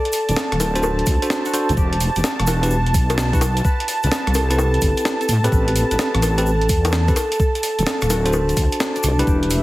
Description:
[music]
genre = UK garage, two-step garage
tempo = 128 BPM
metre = 4/4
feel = swing 67% on 16ths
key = unclear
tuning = A4 = 439 Hz
[part]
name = concert harp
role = melody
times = 0.0-9.6 s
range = D4 to D5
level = -26 LUFS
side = equal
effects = tape echo
[part]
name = warm analog pad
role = sustained chords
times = 0.0-9.6 s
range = E5 to A5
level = -26 LUFS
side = right 1 dB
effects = chorus, sidechain pumping
[part]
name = breakbeat sampler-style drum kit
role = drums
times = 0.1-9.6 s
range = bongos, hi-hat, rim click, snare drum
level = -24 LUFS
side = equal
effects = none
[part]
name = egg shaker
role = percussion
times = 0.1-9.6 s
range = none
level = -32 LUFS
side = left 2 dB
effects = none
[part]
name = deep soft wobble bass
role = bass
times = 0.3-9.6 s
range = D1 to A2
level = -19 LUFS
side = equal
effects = chorus, sidechain pumping
[part]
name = bell-like tine electric piano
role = stabs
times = 0.8-9.6 s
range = C4 to C5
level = -24 LUFS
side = equal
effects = dub echo
[part]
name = electronic kick drum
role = drums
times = 1.1-9.4 s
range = none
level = -19 LUFS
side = equal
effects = overdrive
[sound]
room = light reverb, digital ambience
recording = heavily compressed radio sound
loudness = -16 LUFS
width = side -17 dB against mid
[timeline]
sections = 0.0-9.6 A section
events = none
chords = 0.0 D7; 1.8 Em; 3.6 Cmaj7; 5.3 Am9; 7.2 D7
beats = 0.36 0.83 1.30 | 1.77 2.24 2.71 3.18 | 3.65 4.12 4.58 5.05 | 5.52 5.99 6.46 6.93 | 7.40 7.87 8.33 8.80 | 9.27

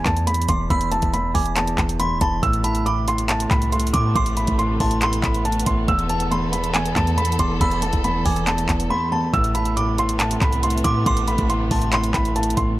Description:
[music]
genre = hip hop, trap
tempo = 139 BPM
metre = 4/4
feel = half-time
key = A minor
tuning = A4 = 441 Hz
[part]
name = delicate synth tine bell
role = second line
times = 0.0-12.8 s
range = A5 to E6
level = -31 LUFS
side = right 1 dB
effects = chorus, phaser, digital delay
[part]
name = dark concert grand piano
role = accompaniment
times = 0.0-12.8 s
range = E2 to A2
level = -24 LUFS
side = equal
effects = low-pass filter
[part]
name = felt-muted upright piano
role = melody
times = 0.1-12.7 s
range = G#5 to E6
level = -24 LUFS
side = right 1 dB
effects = low-pass filter, digital delay
[part]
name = clean 808-style bass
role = bass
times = 0.1-12.8 s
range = D1 to A2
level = -24 LUFS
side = equal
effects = none
[part]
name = trap drum kit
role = drums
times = 0.1-12.7 s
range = handclaps, hi-hat, kick drum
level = -23 LUFS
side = equal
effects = overdrive
[part]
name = warm studio string section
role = sustained chords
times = 2.4-12.8 s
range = C3 to A4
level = -30 LUFS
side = equal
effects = none
[sound]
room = small room reverb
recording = none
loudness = -18 LUFS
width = side -16 dB against mid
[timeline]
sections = 0.0-9.3 A section; 9.3-12.8 A section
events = silent gap 8.9-9.3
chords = 0.0 Esus4; 2.4 Amadd9; 5.9 Esus4; 9.3 Amadd9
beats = 0.27 | 0.70 1.14 1.57 2.00 | 2.43 2.86 3.29 3.73 | 4.16 4.59 5.02 5.45 | 5.88 6.32 6.75 7.18 | 7.61 8.04 8.47 8.90 | 9.34 9.77 10.20 10.63 | 11.06 11.49 11.93 12.36 | 12.79

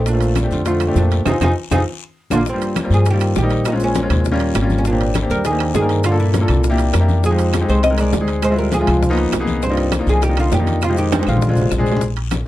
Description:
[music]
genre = Afro-Cuban jazz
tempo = 201 BPM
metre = 4/4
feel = straight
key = Eb major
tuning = A4 = 440 Hz
[part]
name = upright bass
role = bass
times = 0.0-12.4 s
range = Ab1 to G2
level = -18 LUFS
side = equal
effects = none
[part]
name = oud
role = melody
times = 0.1-11.8 s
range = Bb3 to Eb5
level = -22 LUFS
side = right 1 dB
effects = none
[part]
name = breathy trombone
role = second line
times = 0.1-11.8 s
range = G2 to C4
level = -23 LUFS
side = right 3 dB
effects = none
[part]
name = clear grand piano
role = accompaniment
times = 0.1-12.0 s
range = G3 to Bb4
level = -21 LUFS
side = left 2 dB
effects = none
[part]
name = bongos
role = percussion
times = 0.1-12.5 s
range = none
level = -29 LUFS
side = left 9 dB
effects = none
[part]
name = congas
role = percussion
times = 0.1-12.5 s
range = none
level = -26 LUFS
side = left 2 dB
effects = none
[part]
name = guiro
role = percussion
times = 0.1-12.5 s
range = none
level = -37 LUFS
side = left 8 dB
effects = none
[part]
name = maracas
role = percussion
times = 0.1-12.5 s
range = none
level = -37 LUFS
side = right 7 dB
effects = none
[part]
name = timbales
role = percussion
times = 0.1-12.5 s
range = none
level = -26 LUFS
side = right 7 dB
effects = none
[part]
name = claves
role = percussion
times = 0.4-12.5 s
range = none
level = -32 LUFS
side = right 6 dB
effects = none
[sound]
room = light reverb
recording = dark, warm production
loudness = -14 LUFS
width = side -15 dB against mid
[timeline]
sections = 0.0-2.5 A section; 2.5-12.0 B section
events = band accent 1.3-2.5; drum fill 1.6-2.5, 11.1-12.0; grand piano fill 2.0-2.5, 6.8-7.2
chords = 0.1 Bbmaj9; 1.3 Fm7; 1.9 Bb; 2.5 Eb6; 3.7 Bbm7; 4.2 Eb9; 4.8 Abmaj9#11; 6.0 Gm9; 6.6 C7; 7.2 Fm9; 8.4 Dm7b5; 9.0 Db13; 9.6 Cm11; 10.8 Fm7; 11.4 Bb7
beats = | 0.07 0.37 0.67 0.96 | 1.26 1.56 1.86 2.16 | 2.46 2.76 3.06 3.35 | 3.65 3.95 4.25 4.55 | 4.85 5.15 5.44 5.74 | 6.04 6.34 6.64 6.94 | 7.24 7.54 7.83 8.13 | 8.43 8.73 9.03 9.33 | 9.63 9.93 10.22 10.52 | 10.82 11.12 11.42 11.72 | 12.02 12.32

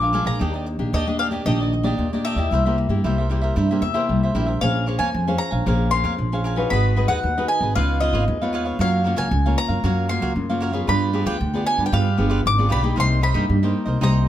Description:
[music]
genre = samba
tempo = 115 BPM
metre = 4/4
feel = straight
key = unclear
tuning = A4 = 440 Hz
[part]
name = mandolin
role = melody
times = 0.0-14.3 s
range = Eb5 to D6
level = -24 LUFS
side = left 1 dB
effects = none
[part]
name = cavaquinho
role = accompaniment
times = 0.0-14.3 s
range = D4 to Ab5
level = -28 LUFS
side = right 4 dB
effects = none
[part]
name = nylon-string guitar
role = accompaniment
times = 0.0-14.3 s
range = Bb2 to C5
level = -25 LUFS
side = left 4 dB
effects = none
[part]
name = upright bass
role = bass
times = 0.0-14.3 s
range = G1 to G2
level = -21 LUFS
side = right 1 dB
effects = none
[sound]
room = little or no reverb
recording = close, detailed microphones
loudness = -18 LUFS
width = side -12 dB against mid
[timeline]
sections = 0.0-4.6 A section; 4.6-14.3 B section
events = none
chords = 0.4 Ebmaj7; 2.5 C7; 4.6 Bbm9; 6.7 Abm7; 7.8 Db9; 8.8 Gbmaj7; 10.9 G7b9; 13.0 Cm7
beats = | 0.41 0.94 1.46 1.99 | 2.51 3.04 3.56 4.09 | 4.61 5.14 5.66 6.18 | 6.71 7.23 7.75 8.28 | 8.80 9.32 9.84 10.37 | 10.89 11.41 11.93 12.45 | 12.97 13.49 14.01

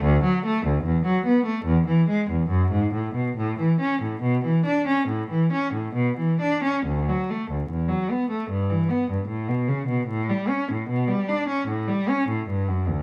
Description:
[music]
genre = classical, baroque-style suite movement for unaccompanied cello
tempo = 65-75 BPM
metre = 4/4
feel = rubato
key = A major, D major from 6.8 s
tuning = A4 = 441 Hz
[part]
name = rich cello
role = solo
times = 0.0-13.0 s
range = D2 to D4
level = -24 LUFS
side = equal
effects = none
[sound]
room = moderate stone room reverb, RT60 1.1 s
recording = dark, warm production, vinyl crackle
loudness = -24 LUFS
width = mono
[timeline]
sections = 0.0-6.8 A section; 6.8-13.0 A section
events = none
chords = none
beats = | 0.01 0.84 1.66 2.50 | 3.36 4.22 5.08 5.94 | 6.84 7.67 8.48 9.28 | 10.08 10.90 11.70 12.50

